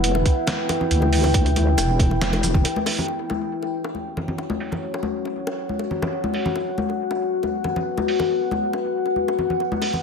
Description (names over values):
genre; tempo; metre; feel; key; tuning
deep dubstep; 138 BPM; 4/4; half-time; unclear; A4 = 440 Hz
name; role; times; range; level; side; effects
deep dark ambient pad; sustained chords; 0.0-10.0 s; E4 to G5; -23 LUFS; left 2 dB; chorus, built-in reverb
wobble bass; bass; 0.0-2.6 s; E1 to D2; -20 LUFS; equal; chorus
trip hop sampler-style drum kit; drums; 0.0-9.9 s; hi-hat, shaker, snare drum; -27 LUFS; right 2 dB; low-pass filter on hats, low-pass filter on snare, low-pass filter on perc
bongos and congas; percussion; 0.1-10.0 s; none; -27 LUFS; left 2 dB; dub echo
electronic kick drum; drums; 0.3-2.6 s; none; -19 LUFS; equal; none
room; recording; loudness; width
moderate plate reverb, RT60 1.3 s; dreamy mix soaked in reverb; -20 LUFS; side -5 dB against mid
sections
0.0-3.1 A section; 3.1-10.0 B section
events
break 2.6-3.1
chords
0.0 Em; 3.1 F#5